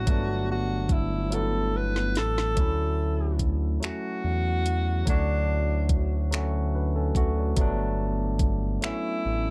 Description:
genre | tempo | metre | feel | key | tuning
slow six-eight R&B | 48 BPM (dotted quarters) | 6/8 | straight | D major | A4 = 441 Hz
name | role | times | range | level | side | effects
breathy tenor saxophone | melody | 0.0-9.5 s | D4 to B4 | -33 LUFS | equal | plate reverb
barky tine electric piano | accompaniment | 0.0-9.5 s | F#3 to C#5 | -34 LUFS | equal | overdrive, plate reverb
smooth synth bass | bass | 0.0-9.5 s | G1 to E2 | -29 LUFS | equal | none
smooth R&B drum kit | drums | 0.1-9.0 s | finger snaps, hi-hat, kick drum, snare drum | -28 LUFS | equal | none
room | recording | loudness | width
light reverb | dark, warm production | -26 LUFS | mono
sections
0.0-9.5 A section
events
drum fill 1.3-2.6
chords
0.0 Gmaj9; 2.6 Dmaj9; 7.6 Gmaj9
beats
| 0.07 1.32 | 2.57 3.82 | 5.07 6.32 | 7.57 8.82

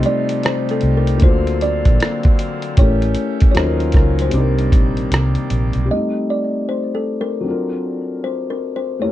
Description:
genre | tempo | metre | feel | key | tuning
lo-fi hip hop | 77 BPM | 4/4 | swing 64% on 16ths | C dorian | A4 = 440 Hz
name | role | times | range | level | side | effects
kalimba | melody | 0.0-9.1 s | A4 to Eb5 | -23 LUFS | left 1 dB | low-pass filter, analog delay
felt-muted upright piano | accompaniment | 0.0-9.1 s | Gb3 to C5 | -22 LUFS | left 2 dB | cassette tape, low-pass filter
pipe organ, full organ | sustained chords | 0.0-5.9 s | C3 to E#5 | -25 LUFS | left 1 dB | low-pass filter
vintage muted fingered electric bass | bass | 0.0-5.9 s | A1 to Eb2 | -18 LUFS | equal | none
lo-fi sampler-style drum kit | drums | 0.0-5.9 s | hi-hat, kick drum, rim click | -14 LUFS | equal | none
room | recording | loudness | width
light reverb | dark, warm production | -15 LUFS | side -14 dB against mid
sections
0.0-5.9 A section; 5.9-9.1 B section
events
none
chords
0.0 Cm6; 1.2 D7alt; 2.8 A7b9; 3.6 Ebm7; 4.3 Cm9; 5.9 Cm6; 7.5 D7alt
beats
0.44 1.22 2.00 | 2.77 3.55 4.33 5.11 | 5.89 6.67 7.45 8.23 | 9.01

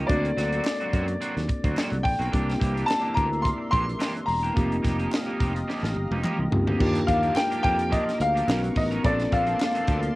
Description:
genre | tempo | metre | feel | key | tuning
polished 1980s jazz-funk pop | 107 BPM | 4/4 | swing 54% on 16ths | unclear | A4 = 440 Hz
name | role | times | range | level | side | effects
warm baby grand piano | melody | 0.0-10.1 s | D5 to C6 | -26 LUFS | left 1 dB | none
mellow tine electric piano | accompaniment | 0.0-10.2 s | G3 to Bb4 | -30 LUFS | equal | wide subtle chorus, cassette tape
electric guitar at the edge of break-up | riff | 0.0-10.1 s | E3 to A#4 | -33 LUFS | right 2 dB | analog chorus, cassette tape
sustaining fretless electric bass | bass | 0.0-10.1 s | E1 to F#2 | -28 LUFS | equal | none
crisp fusion drum kit | drums | 0.1-10.1 s | crash cymbal, hi-hat, kick drum, snare drum, toms | -28 LUFS | equal | cassette tape
group handclap | percussion | 0.6-9.7 s | none | -42 LUFS | left 2 dB | none
lush unison pad | sustained chords | 2.3-10.2 s | Bb3 to D6 | -36 LUFS | equal | chorus, cassette tape
room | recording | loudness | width
moderate small room reverb, RT60 0.5 s | home recording on cassette | -22 LUFS | side -19 dB against mid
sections
0.0-6.8 A section; 6.8-10.2 B section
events
drum fill 5.7-6.8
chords
0.1 D7b13; 2.3 C9; 4.6 F9sus4; 6.8 Ebmaj9; 8.5 Bmaj9; 9.0 Bbmaj9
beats
| 0.10 0.66 1.22 1.77 | 2.33 2.89 3.45 4.01 | 4.57 5.13 5.68 6.24 | 6.80 7.36 7.92 8.48 | 9.04 9.60

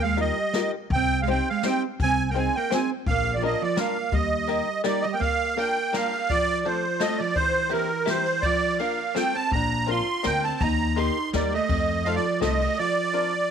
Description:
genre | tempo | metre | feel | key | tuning
musette waltz | 167 BPM | 3/4 | rubato | Eb major, Bb major from 5.2 s | A4 = 440 Hz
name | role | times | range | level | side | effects
musette accordion | melody | 0.0-13.5 s | Bb4 to C6 | -24 LUFS | right 2 dB | none
hollow-body jazz guitar | second line | 0.0-13.5 s | E3 to F4 | -29 LUFS | right 10 dB | none
upright bass | bass | 0.0-4.6, 9.5-12.6 s | Bb1 to F2 | -27 LUFS | left 3 dB | none
open-back banjo | accompaniment | 0.2-13.3 s | A3 to C5 | -30 LUFS | left 16 dB | none
jazz brush drum kit | drums | 0.2-12.7 s | hi-hat, kick drum, ride cymbal, snare drum | -32 LUFS | left 3 dB | none
room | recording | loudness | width
light reverb | 1960s-style stereo with parts hard left and right | -22 LUFS | side -7 dB against mid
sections
0.0-5.2 A section; 5.2-13.5 B section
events
none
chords
0.0 Ebadd9; 0.9 Cm; 2.0 Ab/C; 3.1 Bb; 4.1 Eb; 5.2 Bb; 6.3 F; 7.4 C7; 8.4 Bb/F; 9.2 F; 9.5 Bbadd9; 10.6 Eb; 11.7 F7; 12.8 Bbadd9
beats
0.18 0.55 | 0.92 1.28 1.64 | 2.01 2.37 2.72 | 3.07 3.42 3.78 | 4.13 4.49 4.86 | 5.22 5.59 5.95 | 6.31 6.66 7.01 | 7.36 7.72 8.07 | 8.43 8.79 9.16 | 9.53 9.89 10.25 | 10.62 10.98 11.34 | 11.70 12.06 12.42 | 12.78 13.14

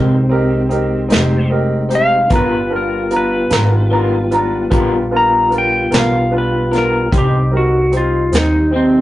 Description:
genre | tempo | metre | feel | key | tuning
slow blues | 50 BPM (dotted quarters) | 12/8 | straight | unclear | A4 = 439 Hz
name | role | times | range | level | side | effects
clean lap steel guitar | melody | 0.0-9.0 s | C4 to A#5 | -16 LUFS | equal | none
clear upright piano | accompaniment | 0.0-9.0 s | G3 to A#5 | -20 LUFS | right 1 dB | none
electric guitar through a small old amp | accompaniment | 0.0-9.0 s | Ab2 to A#4 | -22 LUFS | left 3 dB | harmonic tremolo
mellow tonewheel organ | sustained chords | 0.0-9.0 s | G3 to G4 | -21 LUFS | left 1 dB | slow rotary speaker
upright bass | bass | 0.0-9.0 s | F1 to Eb2 | -18 LUFS | equal | none
vintage brush drum kit | drums | 0.7-8.5 s | hi-hat, kick drum, snare drum | -17 LUFS | equal | none
room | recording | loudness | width
moderate studio reverb, RT60 0.6 s | rough rehearsal-room recording, nothing above 11.0 kHz | -12 LUFS | side -15 dB against mid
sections
0.0-9.0 A section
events
none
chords
0.0 Abmaj7; 2.3 G7#9; 7.1 Cm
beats
1.11 | 2.31 3.51 4.72 5.92 | 7.12 8.33

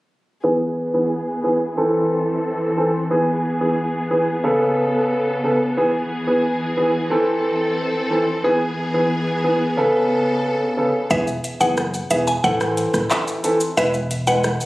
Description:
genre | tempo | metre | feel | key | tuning
dancehall | 90 BPM | 4/4 | straight | E major | A4 = 440 Hz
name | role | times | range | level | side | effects
warm baby grand piano | accompaniment | 0.4-14.4 s | C#3 to B4 | -19 LUFS | equal | low-pass filter
rich symphonic string section | sustained chords | 0.4-11.1 s | C#3 to A4 | -23 LUFS | left 1 dB | sidechain pumping, low-pass filter
mallet-like synth pluck | melody | 11.1-14.4 s | E5 to G#5 | -22 LUFS | equal | chorus, ping-pong delay
mellow fretless electric bass | bass | 11.1-14.6 s | E1 to A1 | -27 LUFS | equal | none
afro-pop drum kit | drums | 11.1-14.7 s | handclaps, hi-hat, kick drum, rim click, shaker | -25 LUFS | equal | none
room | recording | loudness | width
moderate plate reverb, RT60 2.1 s | recorded on a phone in the room, studio reverb, compression | -17 LUFS | side -18 dB against mid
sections
0.4-11.1 A section; 11.1-14.7 B section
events
filter sweep 0.4-11.1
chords
0.4 E; 1.8 Am; 3.1 E; 4.4 Aadd9; 5.8 E; 7.1 Am; 8.4 E; 9.8 Aadd9; 11.1 E; 12.4 Am; 13.8 E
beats
| 0.44 1.11 1.77 2.44 | 3.11 3.77 4.44 5.11 | 5.77 6.44 7.11 7.77 | 8.44 9.11 9.77 10.44 | 11.11 11.77 12.44 13.11 | 13.77 14.44

